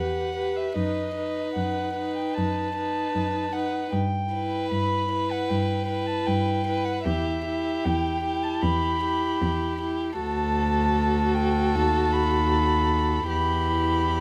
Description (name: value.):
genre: classical, slow romantic movement for string quartet.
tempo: 76 BPM.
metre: 4/4.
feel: rubato.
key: E minor.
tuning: A4 = 440 Hz.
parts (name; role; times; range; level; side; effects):
dark violin; melody; 0.0-14.2 s; D#5 to B5; -30 LUFS; equal; none.
rich violin; second line; 0.0-14.2 s; G4 to B4; -34 LUFS; equal; none.
dark viola; accompaniment; 0.0-14.2 s; D#4 to G4; -32 LUFS; equal; none.
warm cello; bass; 0.0-14.2 s; D2 to G2; -30 LUFS; equal; none.
room: little or no reverb.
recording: close, detailed microphones.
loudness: -25 LUFS.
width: mono.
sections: 0.0-14.2 A section.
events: none.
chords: 0.0 Em; 0.8 B7/F#; 3.9 Em/G; 7.1 Em; 10.2 D; 11.8 B7/D#; 13.3 Em.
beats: | 0.76 1.55 2.37 3.14 | 3.93 4.73 5.51 6.29 | 7.07 7.87 8.64 9.42 | 10.19 10.97 11.77 12.54 | 13.31 14.10.